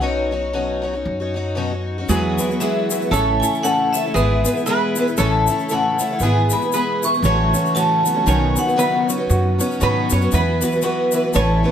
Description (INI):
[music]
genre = acoustic folk duo or small band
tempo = 116 BPM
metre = 4/4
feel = swing 58% on 8ths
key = E major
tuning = A4 = 440 Hz
[part]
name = vibraphone with hard mallets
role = melody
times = 0.0-9.1 s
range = C#5 to C#6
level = -21 LUFS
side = left 1 dB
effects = slapback echo
[part]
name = picked twelve-string acoustic guitar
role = accompaniment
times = 0.0-11.7 s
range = A2 to B4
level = -22 LUFS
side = left 3 dB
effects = none
[part]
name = upright bass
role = bass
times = 0.0-11.6 s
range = G#1 to G#2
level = -21 LUFS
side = equal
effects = none
[part]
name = lap resonator guitar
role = second line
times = 2.1-11.7 s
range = G#4 to C#5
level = -26 LUFS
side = right 4 dB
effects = none
[part]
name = mellow tonewheel organ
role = sustained chords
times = 2.1-11.7 s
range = B2 to F#4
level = -30 LUFS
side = equal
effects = none
[part]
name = felt-muted upright piano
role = arpeggios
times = 2.1-11.7 s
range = D#3 to A4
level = -23 LUFS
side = right 3 dB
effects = none
[part]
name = egg shaker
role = percussion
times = 2.1-11.5 s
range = none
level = -28 LUFS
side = left 5 dB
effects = none
[sound]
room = moderate studio reverb, RT60 0.7 s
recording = none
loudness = -16 LUFS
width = side -9 dB against mid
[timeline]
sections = 0.0-2.1 A section; 2.1-11.7 B section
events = none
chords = 0.0 Badd9; 2.1 Eadd9; 3.1 A; 4.1 E/G#; 5.2 A; 6.2 E/G#; 7.2 F#m7/A; 8.3 Badd9; 10.3 Esus2